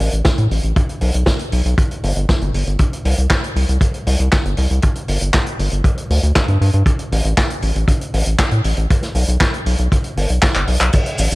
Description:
italo disco; 118 BPM; 4/4; straight; A4 = 440 Hz
round analog bass; bass; 0.0-11.3 s; G1 to A2; -16 LUFS; equal; tube saturation
vintage drum kit; drums; 0.0-11.3 s; cabasa, crash cymbal, handclaps, hi-hat, snare drum; -21 LUFS; equal
kick drum; drums; 0.3-11.0 s; -18 LUFS; equal
little or no reverb; -14 LUFS; side -21 dB against mid
0.0-10.9 A section
drum fill 10.6-10.9

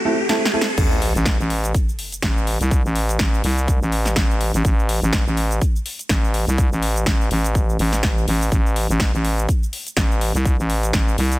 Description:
bass house; 124 BPM; 4/4; swing 56% on 16ths; A minor; A4 = 442 Hz
riser and sub drop; sound effects; 0.0-2.7 s; -26 LUFS; left 1 dB
dark baby grand piano; stabs; 0.1-0.6 s; A3 to A4; -22 LUFS; right 2 dB; sidechain pumping, ping-pong delay
big-room dance drum kit; drums; 0.3-11.4 s; crash cymbal, hi-hat, shaker, snare drum; -25 LUFS; equal
growling FM bass; bass; 0.8-11.4 s; A1 to C2; -19 LUFS; equal; sidechain pumping
electronic kick drum; drums; 0.8-11.0 s; -19 LUFS; equal; high-pass filter on kick
little or no reverb; -17 LUFS; side -18 dB against mid
0.8-11.4 A section
break 0.0-0.8; riser 0.0-0.8; drum fill 0.3-0.8; drop 0.8-11.4; impact 0.8-2.7
0.0 Am; 0.8 N.C.

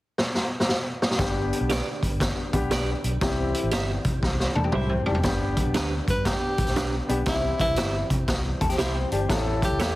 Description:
uptempo 1960s-style soul; 118 BPM; 4/4; swing 65% on 8ths; G major; A4 = 440 Hz
raw garage drum kit; drums; 0.2-10.0 s; hi-hat, kick drum, snare drum, toms; -25 LUFS; equal
warm upright piano; accompaniment; 1.2-9.8 s; B3 to D5; -30 LUFS; left 2 dB
tonewheel organ; sustained chords; 1.2-10.0 s; D3 to A4; -36 LUFS; equal
vintage muted fingered electric bass; bass; 1.2-10.0 s; F1 to C3; -28 LUFS; equal
clean electric guitar; stabs; 1.7-10.0 s; D4 to E5; -32 LUFS; right 4 dB
electric guitar through a small old amp; riff; 4.6-5.4, 8.6-9.4 s; C4 to A4; -32 LUFS; left 5 dB; warbly pitch drift
breathy tenor saxophone; melody; 6.1-10.0 s; E4 to B4; -28 LUFS; equal
light reverb, studio reverb; heavily compressed radio sound, multiband compression; -22 LUFS; side -17 dB against mid
0.0-1.2 A section; 1.2-5.2 B section; 5.2-10.0 C section
drum fill 0.2-1.2, 4.2-5.2
0.0 N.C.; 1.2 G; 3.2 C; 5.2 G; 7.3 C; 9.3 A

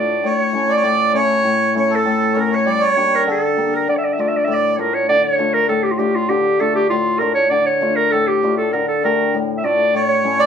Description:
klezmer; 99 BPM; 2/4; straight; D harmonic minor; A4 = 440 Hz
clear clarinet; melody; 0.0-10.5 s; F4 to E5; -17 LUFS; right 1 dB
hammered dulcimer; accompaniment; 0.0-10.5 s; A2 to G4; -20 LUFS; left 4 dB
accordion; second line; 0.3-4.8, 9.9-10.5 s; A4 to D5; -19 LUFS; right 3 dB
wet studio reverb, RT60 0.6 s; heard from further back in the room; -14 LUFS; side -7 dB against mid
0.0-5.1 A section; 5.1-10.5 A section
0.2 A; 2.7 Gm; 3.9 Dm; 9.9 A

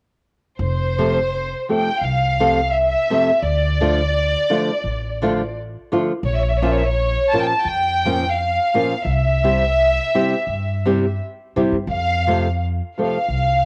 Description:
mexican folk, mariachi; 85 BPM; 4/4; swing 55% on 8ths; F major; A4 = 440 Hz
rich studio violin section; melody; 0.6-13.7 s; C5 to A5; -22 LUFS; equal; cassette tape
upright bass; bass; 0.6-13.7 s; F1 to A2; -24 LUFS; equal
flamenco guitar; accompaniment; 1.0-13.2 s; F2 to A4; -22 LUFS; equal; cassette tape
light reverb, small room ambience; home recording on cassette; -19 LUFS; mono
0.6-13.7 A section
0.6 F; 3.4 Dm; 6.2 Bbm; 9.1 C; 11.9 F

